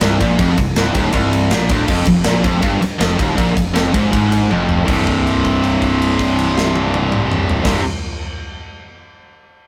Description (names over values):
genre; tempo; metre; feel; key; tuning
heavy metal; 160 BPM; 4/4; straight; C minor; A4 = 440 Hz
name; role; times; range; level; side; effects
tight distorted guitar; riff; 0.0-7.8 s; C2 to C3; -18 LUFS; equal; distortion
fuzz fingered electric bass; bass; 0.0-7.8 s; C1 to Bb1; -22 LUFS; equal; overdrive
tight metal drum kit; drums; 0.0-7.7 s; crash cymbal, kick drum, ride cymbal, snare drum, toms; -22 LUFS; equal; none
room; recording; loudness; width
moderate small room reverb, RT60 0.6 s; rough rehearsal-room recording, tube saturation; -16 LUFS; mono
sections
0.0-4.9 A section; 4.9-7.9 B section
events
drum fill 4.5-4.9; held note 4.9-7.6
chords
0.0 Cm; 1.9 Ebadd9 (rootless); 4.9 C5